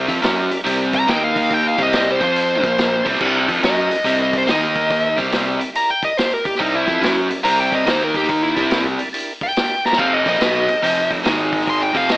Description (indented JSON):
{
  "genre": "blues rock power trio and southern rock",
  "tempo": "142 BPM",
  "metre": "4/4",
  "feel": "swing 65% on 8ths",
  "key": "unclear",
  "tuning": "A4 = 440 Hz",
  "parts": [
    { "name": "overdriven electric guitar", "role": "riff", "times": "0.0-12.2 s", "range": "F2 to F#4", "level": "-19 LUFS", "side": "equal", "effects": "none" },
    { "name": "fuzz fingered electric bass", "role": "bass", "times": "0.0-12.2 s", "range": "F1 to F#2", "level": "-27 LUFS", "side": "equal", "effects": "overdrive" },
    { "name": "percussive tonewheel organ", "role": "sustained chords", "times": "0.1-12.2 s", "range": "Ab3 to F5", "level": "-28 LUFS", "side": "right 1 dB", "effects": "none" },
    { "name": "vintage drum kit", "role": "drums", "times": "0.1-12.2 s", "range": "crash cymbal, hi-hat, kick drum, snare drum", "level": "-23 LUFS", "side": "equal", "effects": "none" },
    { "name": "smooth overdriven lead guitar", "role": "melody", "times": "1.0-12.2 s", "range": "Eb4 to C6", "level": "-19 LUFS", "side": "equal", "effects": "none" }
  ],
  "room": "studio reverb",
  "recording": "AM radio sound",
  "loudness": "-15 LUFS",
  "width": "side -21 dB against mid",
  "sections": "0.0-3.2 A section; 3.2-12.2 A section",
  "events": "lead electric guitar solo 0.0-12.2; drum fill 9.8",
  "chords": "0.0 C7; 1.1 Eb5; 1.7 C7; 2.1 F5; 2.6 Bb5; 3.0 G7; 3.2 C7; 4.5 Eb5; 5.1 C7; 7.9 Eb5; 8.5 C7; 10.0 F7; 11.2 Ab5",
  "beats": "0.23 0.66 1.08 | 1.51 1.93 2.35 2.78 | 3.20 3.63 4.05 4.48 | 4.90 5.33 5.75 6.17 | 6.60 7.02 7.45 7.87 | 8.29 8.72 9.14 9.56 | 9.98 10.41 10.83 11.25 | 11.67 12.09"
}